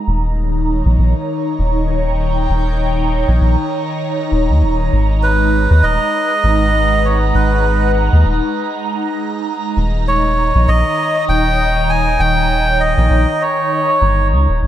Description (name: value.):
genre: ambient dub.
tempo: 99 BPM.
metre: 4/4.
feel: swing 58% on 16ths.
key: unclear.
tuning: A4 = 440 Hz.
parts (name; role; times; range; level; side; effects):
airy breathy pad; sustained chords; 0.0-14.7 s; D#3 to A#5; -19 LUFS; equal; chorus, phaser.
soft dub sub bass; bass; 0.1-14.7 s; D#1 to D#2; -14 LUFS; equal; none.
melodica; melody; 5.2-14.3 s; B4 to G#5; -16 LUFS; right 2 dB; dub echo.
room: light reverb.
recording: none.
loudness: -13 LUFS.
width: side -12 dB against mid.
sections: 0.0-14.6 A section.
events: none.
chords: 0.1 D#7; 4.9 G#m7; 9.8 D#7.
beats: | 0.08 0.68 1.29 1.89 | 2.50 3.11 3.71 4.32 | 4.92 5.53 6.14 6.74 | 7.35 7.95 8.56 9.17 | 9.77 10.38 10.98 11.59 | 12.20 12.80 13.41 14.02 | 14.62.